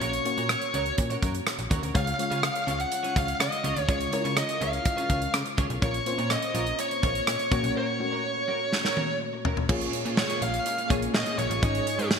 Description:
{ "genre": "1980s-style pop", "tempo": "124 BPM", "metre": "4/4", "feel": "straight", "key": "unclear", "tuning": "A4 = 440 Hz", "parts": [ { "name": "bluesy overdriven lead guitar", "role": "melody", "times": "0.0-12.1 s", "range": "Db5 to Gb5", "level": "-29 LUFS", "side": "right 1 dB", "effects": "distortion, ping-pong delay" }, { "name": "mellow FM electric piano", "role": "accompaniment", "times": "0.0-12.2 s", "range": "Ab2 to Eb5", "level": "-33 LUFS", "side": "left 4 dB", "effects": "chorus" }, { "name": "twelve-string electric guitar", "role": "riff", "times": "0.0-12.1 s", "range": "Ab3 to Db5", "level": "-35 LUFS", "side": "right 2 dB", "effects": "analog chorus, ping-pong delay" }, { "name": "slap-like FM bass", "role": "bass", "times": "0.0-12.2 s", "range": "Ab1 to Db3", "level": "-32 LUFS", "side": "equal", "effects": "none" }, { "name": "modern studio drum kit", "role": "drums", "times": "0.0-12.2 s", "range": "crash cymbal, hi-hat, kick drum, rim click, snare drum, toms", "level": "-28 LUFS", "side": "right 1 dB", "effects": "gated reverb" }, { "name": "string machine, violas", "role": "sustained chords", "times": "9.7-12.2 s", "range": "Ab3 to Eb4", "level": "-37 LUFS", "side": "equal", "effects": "ensemble chorus" } ], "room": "moderate lush hall reverb, RT60 2.3 s", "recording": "bright 1980s-style digital production", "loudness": "-24 LUFS", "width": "side -6 dB against mid", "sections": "0.0-9.7 A section; 9.7-12.2 B section", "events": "drum fill 8.7-9.7", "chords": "0.0 Gb/Bb; 2.0 Db; 5.8 Bbm; 7.5 Gb/Bb; 9.7 Bbm7; 11.6 Absus4", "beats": "| 0.02 0.50 0.98 1.47 | 1.95 2.44 2.92 3.40 | 3.89 4.37 4.85 5.34 | 5.82 6.31 6.79 7.27 | 7.76 8.24 8.72 9.21 | 9.69 10.18 10.66 11.14 | 11.63 12.11" }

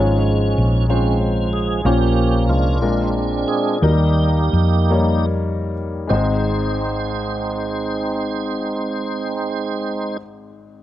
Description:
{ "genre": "slow gospel", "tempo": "47-63 BPM (dotted quarters)", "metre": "6/8", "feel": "straight", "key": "Ab major", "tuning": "A4 = 440 Hz", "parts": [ { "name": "warm upright piano", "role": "accompaniment", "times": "0.0-10.8 s", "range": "Ab1 to Db5", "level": "-24 LUFS", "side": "left 4 dB", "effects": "none" }, { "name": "tonewheel organ", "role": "sustained chords", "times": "0.0-10.2 s", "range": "F3 to C5", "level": "-21 LUFS", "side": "right 3 dB", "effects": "fast rotary speaker, chorus vibrato" }, { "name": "hollow-body short-scale fingered electric bass", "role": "bass", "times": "0.0-10.2 s", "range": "Ab1 to F2", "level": "-19 LUFS", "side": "equal", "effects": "none" } ], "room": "small room reverb", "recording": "dry, close 1970s-style studio recording", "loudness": "-17 LUFS", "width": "side -13 dB against mid", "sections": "0.0-6.1 A section; 6.1-10.8 B section", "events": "tonewheel organ solo 0.0-6.1; slowing down 1.8-6.1", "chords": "0.0 Db/Ab; 1.8 Bbm; 2.8 Bb7; 3.8 Eb; 6.1 Ab", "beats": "0.89 | 1.85 2.81 | 3.82 4.91 | 6.10 7.37 | 8.64 9.90" }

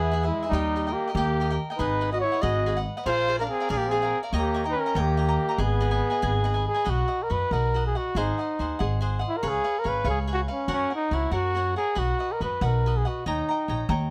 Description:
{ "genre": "mexican folk, mariachi", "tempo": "94 BPM (dotted quarters)", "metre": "6/8", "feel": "straight", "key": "G# minor, B major from 6.9 s", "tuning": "A4 = 437 Hz", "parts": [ { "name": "mellow trumpet", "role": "melody", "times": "0.0-13.9 s", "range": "C#4 to D#5", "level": "-29 LUFS", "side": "equal", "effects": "none" }, { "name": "mellow trumpet", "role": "second line", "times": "0.0-6.6 s", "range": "G3 to F#4", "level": "-34 LUFS", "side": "equal", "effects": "none" }, { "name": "cavaquinho", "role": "accompaniment", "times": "0.0-14.1 s", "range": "E4 to A#5", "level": "-34 LUFS", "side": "equal", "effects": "none" }, { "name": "upright bass", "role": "bass", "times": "0.0-14.1 s", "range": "G#1 to F#2", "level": "-29 LUFS", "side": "equal", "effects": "none" } ], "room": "light reverb", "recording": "none", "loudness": "-26 LUFS", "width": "mono", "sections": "0.0-6.9 A section; 6.9-14.1 B section", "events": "none", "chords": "0.0 E; 0.5 D#; 1.8 G#m7; 3.1 A#7; 4.3 D#7; 5.6 G#m; 6.9 B; 8.2 G#7; 9.4 C#7; 10.7 F#; 12.0 B; 13.3 D#7", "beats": "| 0.52 1.15 | 1.79 2.43 | 3.06 3.69 | 4.32 4.95 | 5.59 6.23 | 6.87 7.51 | 8.15 8.79 | 9.43 10.06 | 10.69 11.33 | 11.97 12.62 | 13.26 13.89" }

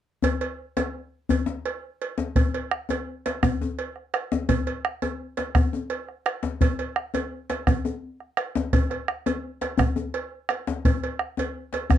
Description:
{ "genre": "west african traditional, West African drum ensemble", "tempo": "113 BPM (dotted quarters)", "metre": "12/8", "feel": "straight", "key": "none", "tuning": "none", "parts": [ { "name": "cowbell", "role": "percussion", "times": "0.2-12.0 s", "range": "none", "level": "-31 LUFS", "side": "right 5 dB", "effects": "none" }, { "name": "djembe", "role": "percussion", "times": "0.2-12.0 s", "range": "none", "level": "-26 LUFS", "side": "left 5 dB", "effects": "none" }, { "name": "bombo", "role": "percussion", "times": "2.4-12.0 s", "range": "none", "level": "-23 LUFS", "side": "right 2 dB", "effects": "none" } ], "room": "moderate studio ambience, RT60 0.5 s", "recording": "dark, warm production", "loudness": "-24 LUFS", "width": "side -11 dB against mid", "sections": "0.2-2.4 A section; 2.4-12.0 B section", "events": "none", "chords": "none", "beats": "| 0.24 0.77 1.30 1.84 | 2.37 2.90 3.43 3.96 | 4.49 5.02 5.55 6.08 | 6.61 7.14 7.67 8.20 | 8.73 9.26 9.79 10.32 | 10.85 11.38 11.91" }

